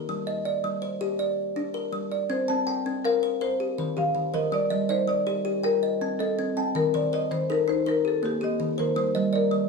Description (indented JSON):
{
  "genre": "southern african traditional, mbira-style interlocking cycle",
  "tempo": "108 BPM (dotted quarters)",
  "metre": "12/8",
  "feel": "straight",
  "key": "C dorian",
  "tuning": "A4 = 440 Hz",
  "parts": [
    { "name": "kalimba", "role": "arpeggios", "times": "0.0-9.7 s", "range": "Eb3 to A5", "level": "-28 LUFS", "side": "left 1 dB", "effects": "none" },
    { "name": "marimba with medium mallets", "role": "melody", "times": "2.3-9.7 s", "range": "G4 to F5", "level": "-26 LUFS", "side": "left 3 dB", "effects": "none" },
    { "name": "kalimba", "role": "arpeggios", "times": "2.5-9.7 s", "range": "Eb3 to A5", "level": "-30 LUFS", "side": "right 5 dB", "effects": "none" }
  ],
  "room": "light reverb",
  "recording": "studio reverb",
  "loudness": "-24 LUFS",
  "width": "side -4 dB against mid",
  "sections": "0.0-2.3 A section; 2.3-9.7 A section",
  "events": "none",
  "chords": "0.1 Gm; 2.3 C5; 3.4 Eb; 4.5 Gm; 5.6 Cm; 6.7 Eb; 9.0 Gm",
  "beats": "| 0.08 0.64 1.19 1.75 | 2.31 2.86 3.42 3.97 | 4.53 5.08 5.64 6.19 | 6.75 7.30 7.86 8.41 | 8.97 9.53"
}